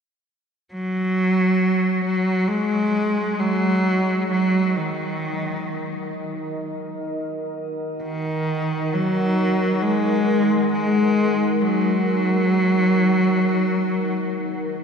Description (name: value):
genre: ambient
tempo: free time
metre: none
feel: none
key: Eb minor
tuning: A4 = 444 Hz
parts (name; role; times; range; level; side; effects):
- clear cello; melody; 0.7-14.8 s; Eb3 to Ab3; -19 LUFS; equal; shimmer reverb, ping-pong delay
- deep dark ambient pad; sustained chords; 3.6-14.8 s; Eb4 to Gb5; -28 LUFS; right 1 dB; chorus, built-in reverb, shimmer reverb
room: wet cathedral reverb, RT60 5.6 s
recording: dark, warm production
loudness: -19 LUFS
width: side -6 dB against mid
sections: 0.7-14.8 A section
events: fade-in on ambient pad 0.7-14.8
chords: 0.7 Ebm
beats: free time